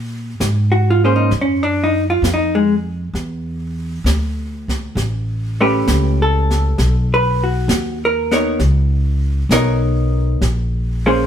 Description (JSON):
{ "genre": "jazz ballad", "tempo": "66 BPM", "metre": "4/4", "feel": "swing 69% on 8ths", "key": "unclear", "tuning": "A4 = 440 Hz", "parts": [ { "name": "upright bass", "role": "bass", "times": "0.0-11.3 s", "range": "A1 to Bb2", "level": "-17 LUFS", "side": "equal", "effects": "none" }, { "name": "jazz brush drum kit", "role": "drums", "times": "0.4-11.3 s", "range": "brushed snare drum, hi-hat, kick drum, snare drum", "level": "-24 LUFS", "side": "right 1 dB", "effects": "none" }, { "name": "vintage hollow-body jazz guitar", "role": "accompaniment", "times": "0.7-11.3 s", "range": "Ab3 to C#5", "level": "-16 LUFS", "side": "equal", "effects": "none" } ], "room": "light reverb", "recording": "band playing live in one room", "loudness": "-15 LUFS", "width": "side -9 dB against mid", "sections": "0.0-11.3 A section", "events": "none", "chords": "0.0 Bbm7; 3.2 Dsus2; 5.0 A9; 6.8 Bmaj9; 10.4 Bbm9" }